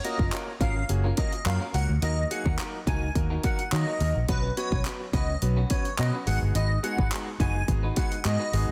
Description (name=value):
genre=dance-pop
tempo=106 BPM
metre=4/4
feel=straight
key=unclear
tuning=A4 = 441 Hz
part: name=airy dreamy lead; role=melody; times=0.0-8.7 s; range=B4 to G#5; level=-35 LUFS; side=equal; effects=chorus, sidechain pumping
part: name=clear concert grand piano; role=accompaniment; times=0.0-8.7 s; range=F#3 to C#5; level=-38 LUFS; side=equal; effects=sidechain pumping
part: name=electric guitar at the edge of break-up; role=riff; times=0.0-8.7 s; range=C#4 to B4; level=-40 LUFS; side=equal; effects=lush chorus
part: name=pop drum kit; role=drums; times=0.0-8.7 s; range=handclaps, hi-hat, kick drum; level=-31 LUFS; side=equal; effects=none
part: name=vintage muted fingered electric bass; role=bass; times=0.2-8.7 s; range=E#1 to D#3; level=-28 LUFS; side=equal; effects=sidechain pumping
room=digital ambience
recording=dense, heavily limited modern master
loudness=-27 LUFS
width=mono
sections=0.0-8.7 A section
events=none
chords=0.0 F#maj7; 2.0 D#m; 4.3 Bsus2; 6.3 G#m7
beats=0.33 0.89 1.46 | 2.02 2.59 3.16 3.72 | 4.29 4.85 5.42 5.99 | 6.55 7.12 7.68 8.25